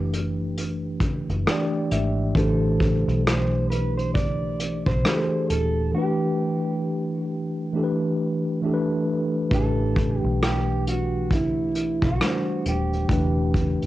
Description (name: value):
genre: lo-fi hip hop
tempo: 67 BPM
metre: 4/4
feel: swing 60% on 16ths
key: A dorian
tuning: A4 = 436 Hz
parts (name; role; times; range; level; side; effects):
- electric guitar through a small old amp; melody; 0.0-13.9 s; E4 to D5; -30 LUFS; right 3 dB; cassette tape, analog delay
- mellow tine electric piano; accompaniment; 0.0-13.9 s; E3 to G5; -25 LUFS; equal; medium stereo tremolo, cassette tape
- vintage muted fingered electric bass; bass; 0.0-13.9 s; D#1 to B1; -26 LUFS; equal; tube saturation
- vintage brush drum kit; drums; 0.1-13.9 s; hi-hat, kick drum, rim click; -25 LUFS; equal; cassette tape
room: light reverb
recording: home recording on cassette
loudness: -21 LUFS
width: side -15 dB against mid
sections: 0.0-9.5 A section; 9.5-13.9 B section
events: break 5.9-9.5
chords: 0.0 Em9; 2.4 Am11; 5.9 Em7; 9.5 Am11; 13.1 Em7